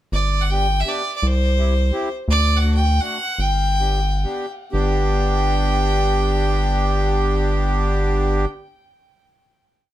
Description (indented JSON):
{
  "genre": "alpine folk, alpine dance band",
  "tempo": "118-171 BPM",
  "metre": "3/4",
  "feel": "rubato",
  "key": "G major",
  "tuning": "A4 = 440 Hz",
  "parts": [
    { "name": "clear fiddle", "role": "melody", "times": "0.1-8.5 s", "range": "C5 to G5", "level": "-23 LUFS", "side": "equal", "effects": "ping-pong delay" },
    { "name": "round analog bass", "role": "bass", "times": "0.1-8.5 s", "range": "G1 to D2", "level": "-19 LUFS", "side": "equal", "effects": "none" },
    { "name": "accordion", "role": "accompaniment", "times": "0.5-8.5 s", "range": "A3 to G4", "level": "-23 LUFS", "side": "equal", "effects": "none" }
  ],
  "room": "light reverb",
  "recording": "none",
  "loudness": "-17 LUFS",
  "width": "side -13 dB against mid",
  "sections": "0.1-4.7 A section; 4.7-7.7 final chord",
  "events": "slowing down 2.3-4.7",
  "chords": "0.1 G; 1.2 C; 2.3 D; 3.4 G"
}